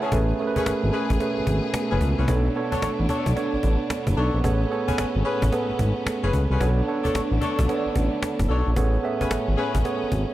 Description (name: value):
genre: R&B, new jack swing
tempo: 111 BPM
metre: 4/4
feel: swing 64% on 16ths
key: A major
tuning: A4 = 440 Hz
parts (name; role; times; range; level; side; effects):
- tine electric piano; accompaniment; 0.0-10.3 s; A3 to A5; -26 LUFS; right 4 dB; none
- warm studio string section; sustained chords; 0.0-10.3 s; A2 to G#4; -30 LUFS; left 2 dB; none
- mellow horn section; stabs; 0.0-9.8 s; A3 to C#5; -30 LUFS; left 4 dB; digital delay
- cajon; drums; 0.0-10.3 s; none; -29 LUFS; equal; none
- smooth synth bass; bass; 0.1-10.2 s; F#1 to C#2; -23 LUFS; equal; none
room: small room reverb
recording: none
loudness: -21 LUFS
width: side -14 dB against mid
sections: 0.1-10.3 A section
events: none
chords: 0.1 Amaj9; 2.3 Bm9; 4.4 Amaj9; 6.6 Bm9; 8.8 Amaj9